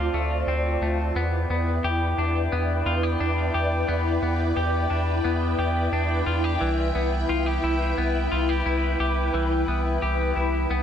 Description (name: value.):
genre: dream pop.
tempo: 88 BPM.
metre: 4/4.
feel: straight.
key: unclear.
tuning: A4 = 440 Hz.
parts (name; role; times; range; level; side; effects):
soft string machine; sustained chords; 0.0-10.8 s; E4 to A5; -26 LUFS; equal; phaser, ensemble chorus.
clean electric guitar; arpeggios; 0.0-10.8 s; E3 to G4; -28 LUFS; left 2 dB; wide subtle chorus, digital delay.
saturated sub bass; bass; 0.0-10.8 s; C2 to E2; -25 LUFS; equal; none.
room: moderate plate reverb, RT60 2.6 s.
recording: none.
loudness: -22 LUFS.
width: side -8 dB against mid.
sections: 0.0-1.2 A section; 1.2-10.8 B section.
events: none.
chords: 0.0 Dm7; 1.2 Em7; 6.6 Cmaj7.